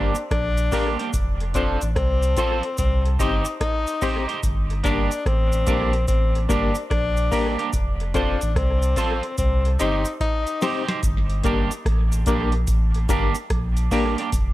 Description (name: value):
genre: roots reggae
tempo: 73 BPM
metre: 4/4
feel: swing 64% on 16ths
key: G minor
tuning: A4 = 441 Hz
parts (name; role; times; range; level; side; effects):
- breathy tenor saxophone; second line; 0.0-10.8 s; C4 to Eb4; -27 LUFS; left 4 dB; dub echo
- electric guitar at the edge of break-up; accompaniment; 0.0-14.3 s; Bb3 to C5; -28 LUFS; right 5 dB; analog chorus, dub echo
- barky reed electric piano; stabs; 0.0-14.1 s; Bb3 to C5; -28 LUFS; left 6 dB; overdrive, fast tremolo
- warm sub bass; bass; 0.0-14.5 s; F1 to C2; -22 LUFS; equal; none
- cabasa; percussion; 0.1-14.5 s; none; -36 LUFS; right 2 dB; none
- booming analog drum machine; drums; 0.2-14.5 s; hi-hat, kick drum, rim click, snare drum; -24 LUFS; equal; analog delay
room: digital ambience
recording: echo-heavy mix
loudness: -19 LUFS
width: side -16 dB against mid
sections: 0.0-11.0 A section; 11.0-14.5 B section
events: drum fill 9.4-11.0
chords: 0.0 Gm; 1.1 F; 2.8 Cm; 4.4 Gm; 7.7 F; 9.4 Cm; 11.0 Gm